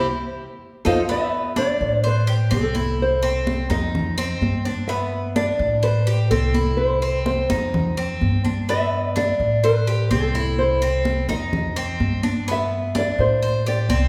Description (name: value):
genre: latin, Cuban son and guajira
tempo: 126 BPM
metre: 4/4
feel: straight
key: unclear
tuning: A4 = 440 Hz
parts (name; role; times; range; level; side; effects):
- nylon-string guitar; melody; 0.0-14.1 s; A4 to F5; -25 LUFS; equal; none
- Cuban tres; arpeggios; 0.0-14.1 s; B3 to C5; -29 LUFS; equal; none
- upright bass; bass; 0.0-14.1 s; C2 to A2; -25 LUFS; equal; none
- congas; percussion; 0.9-14.1 s; none; -29 LUFS; equal; none
room: wet scoring stage reverb, RT60 1.8 s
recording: recorded in a church or concert hall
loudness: -21 LUFS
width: mono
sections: 0.0-1.1 A section; 1.1-14.1 B section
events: band accent 0.0-1.1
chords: 0.1 F7; 1.1 Asus24; 2.0 Am7; 3.0 C; 3.9 F5; 4.9 G6; 5.8 Am7; 6.8 C; 7.7 F5; 8.7 G6; 9.6 Am7; 10.6 C; 11.5 F5; 12.5 G6; 13.4 Am7